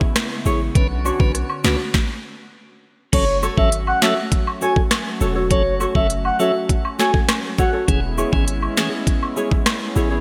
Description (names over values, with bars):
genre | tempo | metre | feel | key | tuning
dancehall | 101 BPM | 4/4 | straight | unclear | A4 = 440 Hz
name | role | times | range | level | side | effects
warm analog pad | sustained chords | 0.0-10.2 s | C#3 to F#4 | -31 LUFS | equal | chorus, sidechain pumping
island pop drum kit | drums | 0.0-9.8 s | crash cymbal, hi-hat, kick drum, rim click, snare drum | -22 LUFS | equal | overdrive, gated reverb
nylon-string guitar | arpeggios | 0.5-10.2 s | D4 to C#5 | -27 LUFS | equal | none
warm 808-style bass | bass | 0.5-10.2 s | E1 to C#2 | -25 LUFS | equal | none
cabasa and woodblock | percussion | 0.5-10.1 s | none | -32 LUFS | equal | none
tonewheel organ | accompaniment | 0.7-8.9 s | D3 to B4 | -30 LUFS | equal | stopped rotary speaker
breathy flute-like synth lead | melody | 3.1-7.7 s | C#5 to G#5 | -24 LUFS | equal | chorus, digital delay
room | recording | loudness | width
moderate lush hall reverb, RT60 2.3 s | bright 1980s-style digital production | -19 LUFS | mono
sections
0.0-3.1 A section; 3.1-10.2 B section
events
stop 1.9-3.1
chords
0.0 E6; 0.8 Bmadd9; 3.1 F#m; 7.9 E6